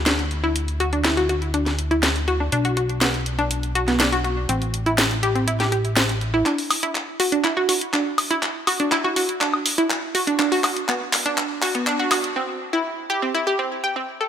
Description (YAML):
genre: progressive house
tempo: 122 BPM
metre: 4/4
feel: straight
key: D mixolydian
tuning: A4 = 440 Hz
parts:
  - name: fat analog bass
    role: bass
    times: 0.0-6.4 s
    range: A1 to D2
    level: -24 LUFS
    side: equal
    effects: none
  - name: analog pluck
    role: arpeggios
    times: 0.1-14.3 s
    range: B3 to G5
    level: -22 LUFS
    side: equal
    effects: chorus, tape echo
  - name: house drum kit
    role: drums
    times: 0.1-12.3 s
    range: handclaps, hi-hat, snare drum, woodblock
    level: -23 LUFS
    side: equal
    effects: none
room: moderate lush hall reverb, RT60 2.1 s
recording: high-pass filter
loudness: -19 LUFS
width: side -9 dB against mid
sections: 0.0-6.5 A section; 6.5-14.3 B section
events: build-up 6.5-14.3; drum fill 6.5-12.4; break 12.4-14.3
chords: 0.0 N.C.; 2.5 B5; 4.5 Am; 6.5 Dadd9; 10.4 Bm; 12.4 Am7 (rootless)